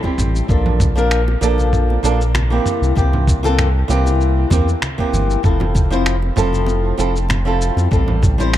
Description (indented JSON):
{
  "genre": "sunset chillout",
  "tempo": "97 BPM",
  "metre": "4/4",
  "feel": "swing 54% on 16ths",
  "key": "F major",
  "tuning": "A4 = 442 Hz",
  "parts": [
    { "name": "flamenco guitar", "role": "accompaniment", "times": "0.0-8.6 s", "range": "E3 to C5", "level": "-19 LUFS", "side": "equal", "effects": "auto-pan, tape echo, shimmer reverb" },
    { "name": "electronic kick drum", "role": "drums", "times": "0.0-8.4 s", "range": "none", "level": "-18 LUFS", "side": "equal", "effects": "none" },
    { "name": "bongos and congas", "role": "percussion", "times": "0.0-8.5 s", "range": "none", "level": "-26 LUFS", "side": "right 1 dB", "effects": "none" },
    { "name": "round analog bass", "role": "bass", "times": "0.2-8.6 s", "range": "F1 to F2", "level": "-17 LUFS", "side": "equal", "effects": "none" },
    { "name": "dusty soul sampler-style drum kit", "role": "drums", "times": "0.2-8.6 s", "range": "finger snaps, shaker, toms", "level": "-23 LUFS", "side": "equal", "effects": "none" }
  ],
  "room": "light reverb, digital ambience",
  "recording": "dark, warm production",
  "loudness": "-14 LUFS",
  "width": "side -12 dB against mid",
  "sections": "0.0-8.6 A section",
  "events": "none",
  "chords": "0.5 Bbmaj7; 2.7 C7; 5.4 Fmaj7; 7.9 Am7"
}